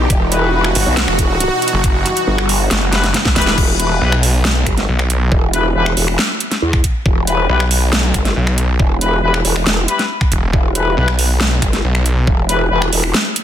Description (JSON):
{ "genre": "heavy wobble dubstep", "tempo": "138 BPM", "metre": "4/4", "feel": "half-time", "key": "E harmonic minor", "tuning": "A4 = 440 Hz", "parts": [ { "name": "supersaw pad", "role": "sustained chords", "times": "0.0-3.6 s", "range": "B2 to F#4", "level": "-20 LUFS", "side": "right 1 dB", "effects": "sidechain pumping" }, { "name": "growl bass", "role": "bass", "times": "0.0-13.1 s", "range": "E1 to E2", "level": "-16 LUFS", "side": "equal", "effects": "chorus, overdrive" }, { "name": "dubstep drum kit", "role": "drums", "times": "0.1-13.4 s", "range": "crash cymbal, finger snaps, hi-hat, snare drum", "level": "-18 LUFS", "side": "right 1 dB", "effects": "soft clipping on snare" }, { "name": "electronic kick drum", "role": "drums", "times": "0.1-12.4 s", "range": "none", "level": "-16 LUFS", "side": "equal", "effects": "none" }, { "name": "clear brass ensemble", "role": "stabs", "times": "0.3-12.8 s", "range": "G3 to B4", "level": "-20 LUFS", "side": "left 4 dB", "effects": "ping-pong delay" }, { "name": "snarling distorted saw bass", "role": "bass", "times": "0.8-12.3 s", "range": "E1 to B1", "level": "-15 LUFS", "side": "equal", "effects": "distortion, overdrive" } ], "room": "light reverb, digital ambience", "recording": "dense, heavily limited modern master", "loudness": "-12 LUFS", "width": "side -10 dB against mid", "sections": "0.0-3.6 A section; 3.6-13.4 A section", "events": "drop 0.0-3.6, 3.6-13.4; drum fill 2.9-3.6", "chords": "0.0 Em", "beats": "| 0.10 0.54 0.97 1.40 | 1.84 2.27 2.71 3.14 | 3.58 4.01 4.45 4.88 | 5.32 5.75 6.19 6.62 | 7.06 7.49 7.93 8.36 | 8.80 9.23 9.66 10.10 | 10.54 10.97 11.40 11.84 | 12.27 12.71 13.14" }